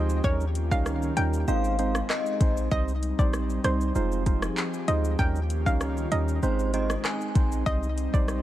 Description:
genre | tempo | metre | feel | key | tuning
dancehall | 97 BPM | 4/4 | straight | unclear | A4 = 440 Hz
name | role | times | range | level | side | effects
hollow square pluck | melody | 0.0-8.3 s | C5 to G5 | -32 LUFS | equal | chorus, digital delay
percussive organ stab | accompaniment | 0.0-8.4 s | G3 to C5 | -32 LUFS | right 6 dB | chorus
airy breathy pad | sustained chords | 0.0-8.4 s | Eb3 to Ab4 | -33 LUFS | equal | chorus, sidechain pumping
clean 808-style bass | bass | 0.0-8.4 s | F1 to Eb2 | -27 LUFS | equal | none
afro-pop drum kit | drums | 0.1-8.4 s | handclaps, hi-hat, kick drum, rim click, shaker | -27 LUFS | equal | vintage 12-bit sampler grit
synth chime | second line | 1.5-2.5, 6.4-7.5 s | C5 to Ab5 | -33 LUFS | left 3 dB | ensemble chorus, phaser, digital delay
room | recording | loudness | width
little or no reverb | none | -23 LUFS | side -13 dB against mid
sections
0.0-8.4 A section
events
none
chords
0.2 Eb7; 1.5 Ab; 2.7 Cm; 4.0 Fm7; 5.2 Eb7; 6.4 Ab; 7.7 Cm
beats
| 0.24 0.86 1.48 2.10 | 2.72 3.33 3.95 4.57 | 5.19 5.81 6.43 7.05 | 7.66 8.28

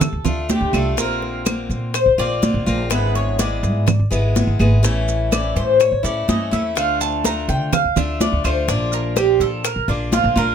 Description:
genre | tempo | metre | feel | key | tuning
latin, Cuban son and guajira | 125 BPM | 4/4 | straight | D minor | A4 = 440 Hz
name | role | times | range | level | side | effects
picked steel-string acoustic guitar | accompaniment | 0.0-10.5 s | D3 to G#4 | -24 LUFS | left 4 dB | none
Cuban tres | arpeggios | 0.0-10.5 s | D4 to Bb5 | -20 LUFS | equal | none
upright bass | bass | 0.0-10.5 s | G#1 to D3 | -21 LUFS | right 1 dB | none
bongos | percussion | 0.0-10.4 s | none | -26 LUFS | left 9 dB | none
claves | percussion | 0.0-9.9 s | none | -30 LUFS | equal | none
congas | percussion | 0.0-10.5 s | none | -22 LUFS | right 3 dB | none
maracas | percussion | 0.0-10.5 s | none | -30 LUFS | right 8 dB | none
room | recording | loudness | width
moderate studio ambience, RT60 0.5 s | close, detailed microphones | -16 LUFS | side -8 dB against mid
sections
0.0-10.5 A section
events
Cuban tres solo 0.0-10.5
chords
0.0 Dm; 1.0 Bbadd9; 2.9 E7/G#; 4.8 A; 6.8 Dm; 8.7 Bb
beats
0.01 0.50 | 0.98 1.46 1.95 2.43 | 2.91 3.40 3.88 4.36 | 4.84 5.32 5.80 6.29 | 6.77 7.25 7.73 8.21 | 8.69 9.17 9.65 10.13

